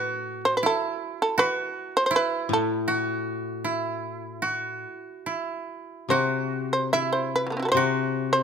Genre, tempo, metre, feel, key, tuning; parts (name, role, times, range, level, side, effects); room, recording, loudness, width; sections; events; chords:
japanese traditional, Japanese chamber music; 70-82 BPM; 4/4; rubato; A kumoi; A4 = 445 Hz
shamisen; melody; 0.0-8.4 s; F#3 to E5; -24 LUFS; right 1 dB
koto; second line; 0.0-8.4 s; E4 to F#4; -28 LUFS; right 4 dB
koto; accompaniment; 0.0-8.4 s; A2 to C3; -29 LUFS; left 6 dB
light reverb; close, detailed microphones; -23 LUFS; side -7 dB against mid
0.0-6.1 A section; 6.1-8.4 B section